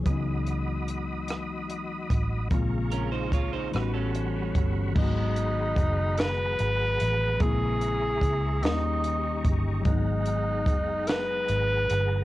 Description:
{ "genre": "slow six-eight R&B", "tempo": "49 BPM (dotted quarters)", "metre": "6/8", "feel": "straight", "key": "G# minor", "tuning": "A4 = 438 Hz", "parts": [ { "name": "tine electric piano", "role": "accompaniment", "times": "0.0-12.2 s", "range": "C#3 to F#4", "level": "-33 LUFS", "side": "left 6 dB", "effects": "cassette tape" }, { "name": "vintage muted fingered electric bass", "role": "bass", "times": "0.0-12.2 s", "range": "F#1 to D#2", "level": "-29 LUFS", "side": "equal", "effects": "none" }, { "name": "tonewheel organ", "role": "sustained chords", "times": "0.1-12.2 s", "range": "G3 to D#6", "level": "-37 LUFS", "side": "right 1 dB", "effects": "overdrive, chorus vibrato, fast rotary speaker, cassette tape, plate reverb" }, { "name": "compact cocktail drum kit", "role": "drums", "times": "0.1-12.1 s", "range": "crash cymbal, hi-hat, kick drum, rim click, snare drum", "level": "-28 LUFS", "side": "equal", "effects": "cassette tape" }, { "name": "electric guitar at the edge of break-up", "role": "second line", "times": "2.9-4.9 s", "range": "C#4 to C#5", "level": "-34 LUFS", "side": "right 9 dB", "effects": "cassette tape, analog delay, plate reverb" }, { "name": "mellow tenor saxophone", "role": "melody", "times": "5.0-12.2 s", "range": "D#4 to B4", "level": "-28 LUFS", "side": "equal", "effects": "cassette tape, analog delay, plate reverb" } ], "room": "light reverb", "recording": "home recording on cassette", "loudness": "-24 LUFS", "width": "side -16 dB against mid", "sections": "0.0-5.0 A section; 5.0-12.2 B section", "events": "none", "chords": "0.1 C#m11; 2.5 A#m7; 3.7 A13; 5.0 G#m9; 7.4 A#m7b5; 8.6 D#7; 9.9 G#m9" }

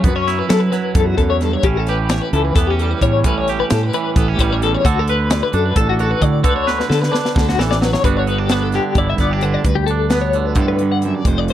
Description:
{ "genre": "math rock and midwest emo", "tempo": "262 BPM (eighths)", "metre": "7/8", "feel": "straight", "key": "G lydian", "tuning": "A4 = 440 Hz", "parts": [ { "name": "twangy electric guitar", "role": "accompaniment", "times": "0.0-11.5 s", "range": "E2 to B4", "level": "-21 LUFS", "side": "right 9 dB", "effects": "none" }, { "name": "twelve-string electric guitar", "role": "arpeggios", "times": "0.0-11.5 s", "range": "F#4 to F#5", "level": "-20 LUFS", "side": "left 8 dB", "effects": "tremolo" }, { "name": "fuzz fingered electric bass", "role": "bass", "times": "0.0-11.5 s", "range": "F1 to F#3", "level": "-18 LUFS", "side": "equal", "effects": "overdrive" }, { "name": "crisp fusion drum kit", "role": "drums", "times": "0.0-11.5 s", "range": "hi-hat, kick drum, snare drum", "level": "-19 LUFS", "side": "equal", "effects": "none" } ], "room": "little or no reverb", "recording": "dry, close 1970s-style studio recording", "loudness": "-14 LUFS", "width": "side -11 dB against mid", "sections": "0.0-8.0 A section; 8.0-11.5 B section", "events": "drum fill 6.7-8.0", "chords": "0.0 F#m7; 1.6 A7; 4.8 D; 8.0 Gmaj7" }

